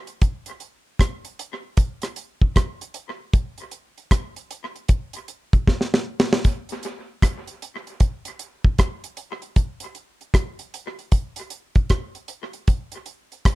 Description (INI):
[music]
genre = reggae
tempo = 77 BPM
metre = 4/4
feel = swing 63% on 16ths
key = none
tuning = none
[part]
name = deep reggae drum kit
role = drums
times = 0.1-13.6 s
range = hi-hat, kick drum, rim click, snare drum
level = -19 LUFS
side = equal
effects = dub echo
[sound]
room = little or no reverb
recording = none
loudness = -20 LUFS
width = side -19 dB against mid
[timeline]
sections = 0.0-13.6 A section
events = drum fill 5.7-6.5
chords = none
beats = | 0.22 1.00 1.78 2.56 | 3.34 4.12 4.89 5.67 | 6.45 7.23 8.01 8.79 | 9.57 10.35 11.12 11.90 | 12.68 13.46